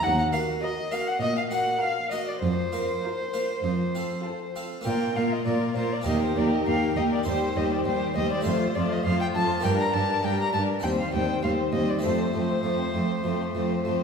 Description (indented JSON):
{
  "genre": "classical, baroque-style concerto movement with solo episodes",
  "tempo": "100 BPM",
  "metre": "4/4",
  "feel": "straight",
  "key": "unclear",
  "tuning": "A4 = 440 Hz",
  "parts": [
    { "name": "dark violin", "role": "melody", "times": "0.0-13.8 s", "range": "C5 to Bb5", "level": "-30 LUFS", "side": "left 1 dB", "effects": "none" },
    { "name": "dark chamber violin section", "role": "second line", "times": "0.0-14.0 s", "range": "C4 to Gb5", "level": "-32 LUFS", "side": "left 2 dB", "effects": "none" },
    { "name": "harpsichord", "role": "accompaniment", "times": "0.0-14.0 s", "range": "Eb2 to C5", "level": "-30 LUFS", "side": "right 1 dB", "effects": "none" },
    { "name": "rich chamber cello section", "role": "bass", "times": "0.0-13.9 s", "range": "Eb2 to Bb2", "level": "-29 LUFS", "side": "right 2 dB", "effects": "none" },
    { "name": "rich chamber violin section", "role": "melody", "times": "0.6-14.0 s", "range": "A4 to C5", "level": "-34 LUFS", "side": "left 7 dB", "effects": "none" },
    { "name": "rich chamber viola section", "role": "accompaniment", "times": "0.6-14.0 s", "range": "G3 to Gb4", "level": "-31 LUFS", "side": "right 2 dB", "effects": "none" }
  ],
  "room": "wet scoring stage reverb, RT60 1.7 s",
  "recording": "heard from further back in the room",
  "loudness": "-23 LUFS",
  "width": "side -6 dB against mid",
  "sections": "0.0-4.9 A section; 4.9-14.0 A section",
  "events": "none",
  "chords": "0.0 Ebm; 2.4 Fsus4; 3.6 F; 4.9 Bb5; 6.1 Eb; 7.3 Cm/Eb; 8.5 F; 9.6 Gm; 10.8 Cm/Eb; 12.0 F"
}